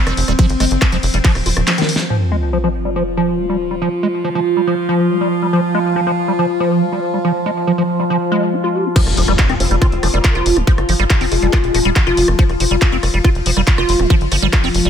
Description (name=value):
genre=psychedelic trance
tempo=140 BPM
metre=4/4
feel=straight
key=F minor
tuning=A4 = 439 Hz
part: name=evolving wavetable pad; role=sustained chords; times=0.0-14.9 s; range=F3 to F4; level=-19 LUFS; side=equal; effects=phaser, built-in reverb, sidechain pumping
part: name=liquid acid bass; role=riff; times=0.0-14.9 s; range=Eb3 to G4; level=-19 LUFS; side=moving between left 3 dB and right 4 dB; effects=phaser, auto-pan, sidechain pumping, ping-pong delay
part: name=tight sequencer bass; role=bass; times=0.1-1.6, 9.1-14.9 s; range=Eb1 to G1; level=-18 LUFS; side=equal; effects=none
part: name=big-room dance drum kit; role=drums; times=0.1-2.1, 9.0-14.9 s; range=crash cymbal, handclaps, hi-hat, ride cymbal, rim click, snare drum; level=-20 LUFS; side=left 1 dB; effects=studio reverb
part: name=electronic kick drum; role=drums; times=0.4-1.3, 9.0-14.6 s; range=none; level=-13 LUFS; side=equal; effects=studio reverb
part: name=sub drop and impact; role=sound effects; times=2.1-3.8, 9.0-10.7 s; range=none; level=-22 LUFS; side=equal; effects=none
part: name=vowel-sweep wobble bass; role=second line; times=9.6-11.9 s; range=Ab3 to C4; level=-30 LUFS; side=right 1 dB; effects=wide subtle chorus, sidechain pumping, high-pass filter, ping-pong delay
room=light reverb, digital ambience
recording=none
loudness=-13 LUFS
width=side -8 dB against mid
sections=0.0-2.1 A section; 2.1-9.0 B section; 9.0-14.9 A section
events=drop 0.0-2.1, 9.0-14.9; drum fill 1.7-2.1; impact 2.1-3.8, 9.0-10.7; filter sweep on acid bass 2.1-9.0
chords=0.0 F5; 2.1 Fsus2; 9.0 F5